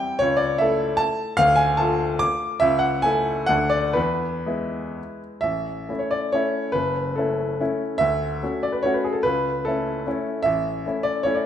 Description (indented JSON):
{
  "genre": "classical, romantic triple-time dance for piano with dotted rhythms",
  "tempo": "113-165 BPM",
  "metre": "3/4",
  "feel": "rubato",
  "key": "A major",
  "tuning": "A4 = 440 Hz",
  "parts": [
    { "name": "warm baby grand piano", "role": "solo", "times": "0.0-11.5 s", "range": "F#1 to D6", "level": "-20 LUFS", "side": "equal", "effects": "none" }
  ],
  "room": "moderate recital hall reverb, RT60 1.6 s",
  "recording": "minimal, uncompressed stereo recording",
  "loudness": "-20 LUFS",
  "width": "side -9 dB against mid",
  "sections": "0.0-5.4 A section; 5.4-11.5 B section",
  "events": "none",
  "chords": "0.2 A/C#; 1.4 Dm; 2.6 A/C#; 3.5 D; 4.0 E; 5.4 A; 6.7 F#m7; 8.0 Dmaj7; 9.2 A/C#; 10.4 A"
}